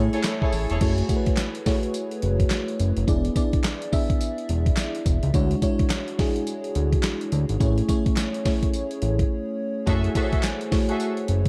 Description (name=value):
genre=R&B, new jack swing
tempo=106 BPM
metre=4/4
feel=swing 61% on 16ths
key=unclear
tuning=A4 = 440 Hz
part: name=FM electric piano with soft pad layer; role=accompaniment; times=0.0-11.5 s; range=G#3 to E5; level=-28 LUFS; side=equal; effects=chorus
part: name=fat analog bass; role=bass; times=0.0-11.5 s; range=E1 to D2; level=-26 LUFS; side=equal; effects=none
part: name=warm studio string section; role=stabs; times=0.1-0.9, 9.9-11.1 s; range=E4 to E5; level=-33 LUFS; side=equal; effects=tape echo
part: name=dusty soul sampler-style drum kit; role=drums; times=0.1-11.5 s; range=crash cymbal, handclaps, hi-hat, kick drum, snare drum, tambourine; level=-26 LUFS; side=equal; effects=none
part: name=group handclap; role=percussion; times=0.2-10.6 s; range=none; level=-45 LUFS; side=equal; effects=none
room=light reverb, digital ambience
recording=dark, warm production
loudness=-24 LUFS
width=mono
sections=0.8-11.5 A section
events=break 9.3-9.9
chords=0.0 Amaj7; 0.8 F#m9; 3.1 E7; 5.3 Dmaj9#11; 7.6 Amaj7; 9.9 F#m9